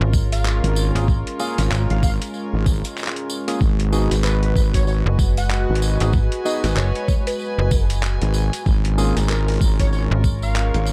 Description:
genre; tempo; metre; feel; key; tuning
glitch hop; 95 BPM; 4/4; swing 59% on 16ths; G# dorian; A4 = 441 Hz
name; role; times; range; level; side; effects
warm analog pad; sustained chords; 0.0-10.9 s; G#3 to B4; -32 LUFS; equal; chorus, vintage 12-bit sampler grit, sidechain pumping
slap-like FM bass; bass; 0.0-10.7 s; F#1 to G#1; -22 LUFS; equal; none
dark chamber string section; texture; 0.0-10.9 s; E#4 to G#5; -33 LUFS; equal; sidechain pumping
electronic kick drum; drums; 0.1-10.4 s; none; -21 LUFS; equal; overdrive
tambourine; percussion; 0.1-10.9 s; none; -36 LUFS; equal; none
plucky unison lead; melody; 0.3-10.9 s; A#4 to F#5; -32 LUFS; equal; analog chorus, cassette tape, delay
boom bap sampler-style drum kit; drums; 0.3-10.8 s; handclaps, hi-hat, snare drum; -30 LUFS; equal; overdrive
wobble bass; bass; 0.6-10.9 s; G#1; -22 LUFS; equal; chorus, tube saturation
overdriven tine electric piano; stabs; 1.0-9.1 s; A#3 to G#4; -29 LUFS; equal; vintage 12-bit sampler grit, sidechain pumping, delay
room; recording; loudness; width
little or no reverb; dark, warm production; -20 LUFS; mono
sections
0.0-10.9 A section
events
none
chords
0.0 A#m7/G#; 3.6 G#m7; 8.7 A#m7/G#

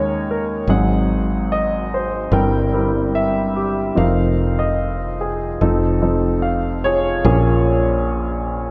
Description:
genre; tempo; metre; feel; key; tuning
acoustic folk-pop ballad; 73 BPM; 4/4; straight; Bb minor; A4 = 439 Hz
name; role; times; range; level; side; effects
warm baby grand piano; melody; 0.0-8.7 s; F1 to G5; -20 LUFS; equal; none
woody fretless electric bass; bass; 0.0-8.7 s; F1 to Eb2; -24 LUFS; equal; none
room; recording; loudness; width
moderate concert hall reverb, RT60 2.1 s; none; -19 LUFS; mono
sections
0.0-7.2 A section; 7.2-8.7 B section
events
none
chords
0.0 Eb7sus4; 0.7 Ab7; 2.3 C7/G; 4.0 F7sus4; 7.2 Bbm7

